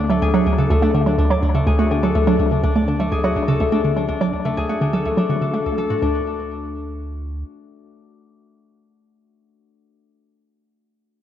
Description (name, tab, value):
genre	ambient, sequencer-driven space music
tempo	124 BPM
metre	4/4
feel	straight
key	D lydian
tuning	A4 = 438 Hz
part	concert harp	arpeggios	0.0-8.8 s	A3 to D5	-22 LUFS	left 4 dB	auto-pan, ping-pong delay
part	hollow square pluck	riff	0.0-6.2 s	D2 to A3	-18 LUFS	right 2 dB	chorus, ping-pong delay
part	round analog bass	bass	0.0-7.4 s	D2	-27 LUFS	right 1 dB	none
room	moderate plate reverb, RT60 2.4 s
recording	worn, warbling old tape, cassette tape, warbly pitch drift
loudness	-17 LUFS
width	side -10 dB against mid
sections	0.0-6.0 A section; 6.0-9.9 B section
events	fade-out on analog synth bass 0.0-6.0; filter sweep on synth arpeggio sound 0.0-6.0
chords	0.0 D; 6.0 N.C.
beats	| 0.22 0.70 1.18 1.67 | 2.15 2.63 3.12 3.60 | 4.09 4.57 5.05 5.54 | 6.02 6.51 6.99 7.47 | 7.96 8.44